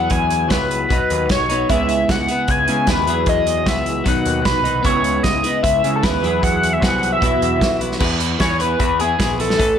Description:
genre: indie rock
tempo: 152 BPM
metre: 4/4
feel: straight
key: E major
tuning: A4 = 440 Hz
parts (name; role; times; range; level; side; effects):
- overdriven synth lead; melody; 0.0-9.8 s; G#4 to G#5; -19 LUFS; left 1 dB; phaser, slapback echo, plate reverb
- twelve-string electric guitar; riff; 0.0-9.8 s; E3 to A4; -23 LUFS; left 7 dB; none
- growling picked electric bass; bass; 0.0-9.8 s; A1 to C#3; -24 LUFS; equal; overdrive
- loose indie drum kit; drums; 0.1-9.7 s; crash cymbal, hi-hat, kick drum, snare drum; -21 LUFS; right 1 dB; none
- mellow electric guitar; riff; 1.7-9.8 s; A2 to G#4; -24 LUFS; right 6 dB; ensemble chorus, slapback echo
room: light reverb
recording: none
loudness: -15 LUFS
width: side -8 dB against mid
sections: 0.0-8.0 A section; 8.0-9.8 B section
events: analog synth lead solo 8.0-9.8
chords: 0.0 Eadd9; 0.9 B; 1.7 C#m7; 3.1 Eadd9; 4.1 B; 4.9 C#m7; 6.2 Eadd9; 7.2 Bsus4; 8.0 E

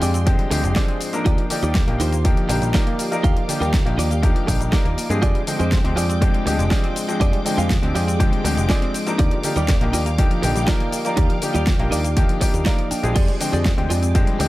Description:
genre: nu-disco, nu disco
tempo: 121 BPM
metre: 4/4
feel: straight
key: unclear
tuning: A4 = 440 Hz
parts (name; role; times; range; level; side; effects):
- bright baby grand piano; accompaniment; 0.0-14.5 s; F3 to G5; -25 LUFS; left 2 dB; sidechain pumping
- string machine, full ensemble; sustained chords; 0.0-14.5 s; Ab3 to D6; -30 LUFS; left 1 dB; ensemble chorus, sidechain pumping
- analog pluck; arpeggios; 0.0-14.4 s; D3 to D4; -30 LUFS; right 1 dB; chorus, sidechain pumping, analog delay
- direct-recorded clean electric guitar; riff; 0.0-14.4 s; Eb4 to G5; -27 LUFS; right 3 dB; analog chorus
- picked electric bass with an envelope filter; bass; 0.0-14.5 s; F1 to G2; -22 LUFS; equal; none
- pop drum kit; drums; 0.0-14.5 s; crash cymbal, hi-hat, shaker, snare drum; -27 LUFS; left 1 dB; small room ambience
- electronic kick drum; drums; 0.3-14.3 s; none; -19 LUFS; equal; small room ambience
room: digital ambience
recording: none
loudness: -17 LUFS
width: side -17 dB against mid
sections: 0.0-14.5 A section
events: clean electric guitar fill 12.2-13.2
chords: 0.0 Fm69; 1.3 Ebmaj9; 5.2 Fm69; 9.2 Ebmaj9; 13.2 Fm69

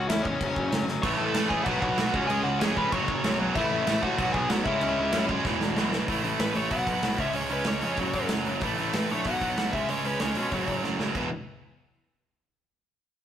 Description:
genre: punk rock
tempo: 190 BPM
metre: 4/4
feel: straight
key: E major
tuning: A4 = 438 Hz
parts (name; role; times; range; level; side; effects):
- bluesy overdriven lead guitar; melody; 0.0-10.8 s; C#4 to C#6; -30 LUFS; left 1 dB; distortion
- cranked stack guitar; riff; 0.0-11.3 s; E2 to C#4; -32 LUFS; left 5 dB; overdrive
- fuzz picked electric bass; bass; 0.0-11.3 s; E1 to B2; -34 LUFS; equal; overdrive
- big rock drum kit; drums; 0.1-11.2 s; crash cymbal, hi-hat, kick drum, snare drum, splash cymbal; -31 LUFS; right 1 dB; none
- distorted electric guitar; riff; 1.0-11.3 s; E2 to C#4; -29 LUFS; right 5 dB; overdrive
room: moderate stone room reverb, RT60 1.2 s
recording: rough rehearsal-room recording, tube saturation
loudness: -24 LUFS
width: side -9 dB against mid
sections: 0.0-6.1 A section; 6.1-11.2 B section; 11.2-12.4 C section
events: drum fill 0.9, 5.5-6.1, 10.8-11.2; lead electric guitar solo 6.1-11.2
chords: 0.4 F#5; 1.0 A; 1.7 B5; 2.1 C#5; 2.9 F#5; 3.6 A5; 4.2 B5; 4.7 C#m; 5.5 E5; 6.1 A5; 6.7 B5; 7.2 C#5; 8.0 F#5; 8.6 A5; 9.3 B5; 9.7 C#5; 10.5 F#5; 11.2 E5

